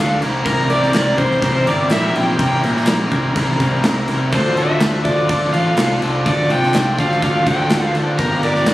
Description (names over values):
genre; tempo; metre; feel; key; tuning
indie rock; 124 BPM; 4/4; straight; D minor; A4 = 441 Hz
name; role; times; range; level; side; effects
overdriven electric guitar; melody; 0.0-8.7 s; Bb4 to G5; -20 LUFS; equal; none
glockenspiel with hard plastic mallets; second line; 0.0-8.7 s; Bb5 to G6; -32 LUFS; right 1 dB; none
lush unison pad; sustained chords; 0.0-8.7 s; F4 to D6; -29 LUFS; left 1 dB; none
overdriven electric guitar; riff; 0.0-8.7 s; C3 to Bb4; -23 LUFS; left 5 dB; none
overdriven electric guitar; riff; 0.0-8.7 s; C3 to Bb4; -23 LUFS; right 3 dB; ensemble chorus
fuzz fingered electric bass; bass; 0.0-8.7 s; G1 to D3; -20 LUFS; equal; overdrive
big rock drum kit; drums; 0.2-8.7 s; crash cymbal, kick drum, snare drum; -21 LUFS; equal; none
group handclap; percussion; 0.9-8.7 s; none; -29 LUFS; left 1 dB; none
room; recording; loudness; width
light reverb; recorded on a phone in the room, studio ambience; -14 LUFS; side -16 dB against mid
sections
0.0-8.7 A section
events
none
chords
0.2 C7; 4.3 Dm7; 8.2 Gm7